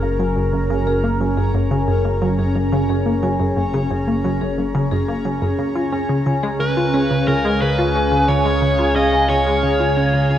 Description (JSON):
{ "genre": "ambient, sequencer-driven space music", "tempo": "89 BPM", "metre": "4/4", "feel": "straight", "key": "unclear", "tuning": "A4 = 440 Hz", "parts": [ { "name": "phased analog pad", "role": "sustained chords", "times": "0.0-10.4 s", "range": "C#3 to G#5", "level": "-20 LUFS", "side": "equal", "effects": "phaser, chorus" }, { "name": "analog pluck", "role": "riff", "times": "0.0-10.4 s", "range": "F#2 to E#4", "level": "-21 LUFS", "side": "equal", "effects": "chorus, ping-pong delay" }, { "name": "fat analog bass", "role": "bass", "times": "0.0-10.4 s", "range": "F#1 to C#2", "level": "-23 LUFS", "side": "equal", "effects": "tube saturation" }, { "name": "bubbling stepped-filter texture", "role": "texture", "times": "0.0-10.4 s", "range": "C#5 to A#5", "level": "-35 LUFS", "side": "right 1 dB", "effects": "chorus, built-in reverb" }, { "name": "vibraphone with medium mallets", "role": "arpeggios", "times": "0.2-10.4 s", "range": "G#4 to G#5", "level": "-27 LUFS", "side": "left 3 dB", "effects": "auto-pan, ping-pong delay" }, { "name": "dark smooth lead guitar", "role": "melody", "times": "6.6-10.4 s", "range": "A#4 to D#5", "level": "-21 LUFS", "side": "right 1 dB", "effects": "overdrive, ping-pong delay" } ], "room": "wet concert hall reverb, RT60 2.4 s", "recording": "worn, warbling old tape, cassette tape, warbly pitch drift", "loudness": "-16 LUFS", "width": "side -11 dB against mid", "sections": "0.0-10.4 A section", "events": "fade-in on vibraphone 0.0-10.4; fade-in on synth texture 0.0-10.4; fade-out 9.2-10.4", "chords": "0.0 F#; 5.6 C#" }